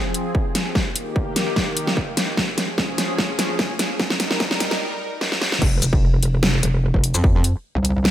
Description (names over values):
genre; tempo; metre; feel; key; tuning
heavy wobble dubstep; 148 BPM; 4/4; swing 53% on 16ths, half-time; F minor; A4 = 440 Hz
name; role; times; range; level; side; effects
supersaw pad; sustained chords; 0.0-5.6 s; Eb3 to Bb4; -27 LUFS; equal; phaser, sidechain pumping, low-pass filter
dubstep drum kit; drums; 0.1-8.1 s; crash cymbal, hi-hat, shaker, snare drum; -21 LUFS; equal; none
electronic kick drum; drums; 0.3-7.3 s; none; -21 LUFS; equal; distortion
metallic wobble bass; bass; 5.6-8.1 s; F1 to F2; -19 LUFS; equal; chorus, overdrive
room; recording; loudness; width
light reverb; high-pass filter; -18 LUFS; side -12 dB against mid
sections
0.0-5.6 A section; 5.6-8.1 B section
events
build-up 0.0-5.6; drum fill 0.0-4.8, 5.2-5.6; filter sweep on supersaw synth 0.0-5.6; filter sweep 0.0-5.6; break 4.8-5.6; drop 5.6-8.1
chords
0.0 Fm; 0.8 Eb; 2.4 Db; 4.0 Eb; 5.6 F5